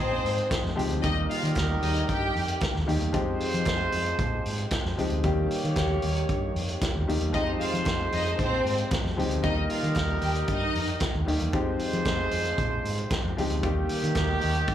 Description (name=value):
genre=disco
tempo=114 BPM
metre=4/4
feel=straight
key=F minor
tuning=A4 = 438 Hz
part: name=clear studio string section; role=second line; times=0.0-2.6, 7.3-11.0 s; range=C4 to G5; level=-30 LUFS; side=left 1 dB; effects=slapback echo
part: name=warm concert grand piano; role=accompaniment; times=0.0-14.7 s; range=Eb3 to G4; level=-31 LUFS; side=left 3 dB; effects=slapback echo
part: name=warm horn section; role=stabs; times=0.0-14.7 s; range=Eb3 to Db5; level=-31 LUFS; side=right 2 dB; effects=slapback echo
part: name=vintage muted fingered electric bass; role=bass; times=0.0-14.7 s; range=Db2 to F3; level=-29 LUFS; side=equal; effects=none
part: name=vintage drum kit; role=drums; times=0.3-14.7 s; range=hi-hat, kick drum, snare drum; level=-30 LUFS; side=equal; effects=none
part: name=group handclap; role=percussion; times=0.5-14.3 s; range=none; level=-42 LUFS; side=right 3 dB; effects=none
room=light reverb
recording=live gig heard through the venue's PA, club reverb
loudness=-24 LUFS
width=side -10 dB against mid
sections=0.0-14.7 A section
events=none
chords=0.0 Fm7; 1.0 Eb; 3.1 Fm7; 5.2 Eb; 7.3 Fm7; 9.4 Eb; 11.5 Fm7; 13.6 Eb